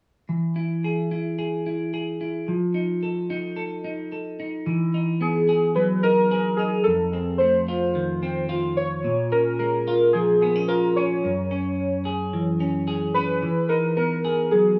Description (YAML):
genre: indie pop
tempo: 110 BPM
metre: 4/4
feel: straight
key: unclear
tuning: A4 = 444 Hz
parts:
  - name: semi-hollow electric guitar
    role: accompaniment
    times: 0.3-14.8 s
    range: F2 to A4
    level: -26 LUFS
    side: equal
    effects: lush chorus, warbly pitch drift
  - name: warbly lo-fi synth keys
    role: melody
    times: 5.2-14.8 s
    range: G#4 to C#5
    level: -24 LUFS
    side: equal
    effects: subtle chorus, digital delay
room: wet small room ambience, RT60 0.5 s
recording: studio reverb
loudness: -23 LUFS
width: mono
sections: 0.3-4.7 A section; 4.7-14.8 B section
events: none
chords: 0.3 E; 2.5 F7; 4.7 Emaj9; 6.9 F7; 9.0 A#m7; 11.2 F#sus2; 13.4 Emaj9